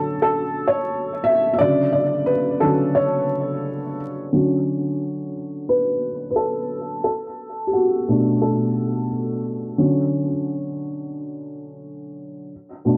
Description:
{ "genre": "hip hop", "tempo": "88 BPM", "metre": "4/4", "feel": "swing 59% on 16ths", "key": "D major", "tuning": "A4 = 440 Hz", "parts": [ { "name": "felt-muted upright piano", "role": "solo", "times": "0.0-13.0 s", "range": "B2 to E5", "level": "-22 LUFS", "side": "equal", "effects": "cassette tape, low-pass filter, tape echo" } ], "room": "moderate studio reverb, RT60 0.6 s", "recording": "home recording on cassette, vinyl crackle, low-pass filter", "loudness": "-22 LUFS", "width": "mono", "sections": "0.0-4.3 A section; 4.3-13.0 B section", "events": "felt piano solo 0.0-4.3, 4.3-13.0; filter sweep 4.3-13.0", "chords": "0.0 Dmaj7; 7.1 Bm7; 9.8 Dmaj7", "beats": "0.24 0.92 | 1.60 2.29 2.97 3.65 | 4.33 5.01 5.70 6.38 | 7.06 7.74 8.42 9.10 | 9.79 10.47 11.15 11.83 | 12.51" }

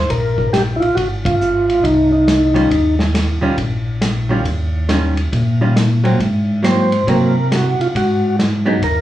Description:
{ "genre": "soul jazz organ trio", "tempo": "138 BPM", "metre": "4/4", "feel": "swing 65% on 8ths", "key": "unclear", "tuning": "A4 = 440 Hz", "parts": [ { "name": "percussive tonewheel organ", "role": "melody", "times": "0.0-3.0, 6.6-9.0 s", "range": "Eb4 to C5", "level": "-16 LUFS", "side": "equal", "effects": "chorus vibrato, slow rotary speaker" }, { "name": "mellow tonewheel organ", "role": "bass", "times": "0.0-9.0 s", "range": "Ab1 to C3", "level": "-17 LUFS", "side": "equal", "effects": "slow rotary speaker" }, { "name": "vintage drum kit", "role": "drums", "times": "0.1-9.0 s", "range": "hi-hat, kick drum, ride cymbal, snare drum", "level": "-22 LUFS", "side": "equal", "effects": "none" }, { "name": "archtop guitar, miked and amplified", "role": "accompaniment", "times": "2.5-8.8 s", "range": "Eb3 to F4", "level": "-17 LUFS", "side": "right 2 dB", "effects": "none" } ], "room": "moderate studio reverb, RT60 0.7 s", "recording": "worn, warbling old tape, cassette tape, warbly pitch drift, small room ambience", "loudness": "-13 LUFS", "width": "side -13 dB against mid", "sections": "0.0-9.0 A section", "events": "band accent 1.2", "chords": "0.0 Ebsus2 (rootless); 1.0 Ab; 2.7 Eb9; 6.2 Ab9; 7.9 Abm7", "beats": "0.09 0.53 | 0.96 1.40 1.84 2.27 | 2.71 3.14 3.58 4.02 | 4.45 4.89 5.33 5.76 | 6.20 6.63 7.07 7.51 | 7.94 8.38 8.82" }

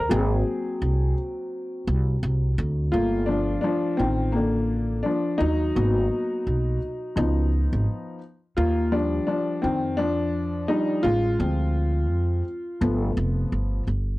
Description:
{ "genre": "hip hop, jazz-hop", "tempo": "85 BPM", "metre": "4/4", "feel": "swing 60% on 16ths", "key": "G minor", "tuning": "A4 = 440 Hz", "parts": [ { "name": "dark baby grand piano", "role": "accompaniment", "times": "0.0-13.8 s", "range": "D3 to Bb4", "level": "-25 LUFS", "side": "left 1 dB", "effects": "none" }, { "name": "upright bass", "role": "bass", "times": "0.0-14.2 s", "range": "F1 to F2", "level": "-24 LUFS", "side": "equal", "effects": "none" } ], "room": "little or no reverb", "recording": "dry, gritty hardware recording, cassette tape", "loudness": "-22 LUFS", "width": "side -19 dB against mid", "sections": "0.0-2.9 A section; 2.9-14.2 B section", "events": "grand piano solo 0.0-2.9, 2.9-14.2", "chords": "0.1 Ab9; 2.9 Gm7; 5.8 Abm7; 7.2 C#9; 8.6 Ebmaj9; 11.4 Dm7b5; 12.8 G7", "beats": "| 0.11 0.81 1.52 2.22 | 2.93 3.64 4.34 5.05 | 5.75 6.46 7.17 7.87 | 8.58 9.28 9.99 10.70 | 11.40 12.11 12.81 13.52" }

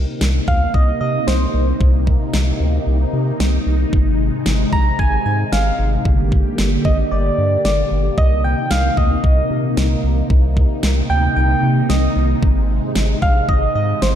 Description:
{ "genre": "synth-pop", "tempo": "113 BPM", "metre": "4/4", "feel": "straight", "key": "C minor", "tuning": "A4 = 440 Hz", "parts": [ { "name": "string machine, cellos", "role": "sustained chords", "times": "0.0-14.2 s", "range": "C3 to G4", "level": "-21 LUFS", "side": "equal", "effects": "phaser, ensemble chorus" }, { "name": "round analog bass", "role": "bass", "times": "0.0-14.2 s", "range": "G1 to C3", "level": "-18 LUFS", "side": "equal", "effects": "none" }, { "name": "pop drum kit", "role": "drums", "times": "0.2-14.1 s", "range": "kick drum, snare drum", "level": "-18 LUFS", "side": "equal", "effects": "none" }, { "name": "soft struck synth lead", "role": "melody", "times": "0.5-14.2 s", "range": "C5 to Bb5", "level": "-21 LUFS", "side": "right 2 dB", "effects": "chorus, ping-pong delay" } ], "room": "moderate lush hall reverb, RT60 1.9 s", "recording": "dreamy mix soaked in reverb", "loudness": "-14 LUFS", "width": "side -10 dB against mid", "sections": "0.0-14.2 A section", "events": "none", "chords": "0.0 Cm7; 3.9 Ab; 6.1 Gm; 8.2 Cm7; 12.4 Ab", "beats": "0.21 0.74 1.27 | 1.81 2.34 2.87 3.40 | 3.93 4.46 4.99 5.52 | 6.05 6.58 7.12 7.65 | 8.18 8.71 9.24 9.77 | 10.30 10.83 11.36 11.89 | 12.43 12.96 13.49 14.02" }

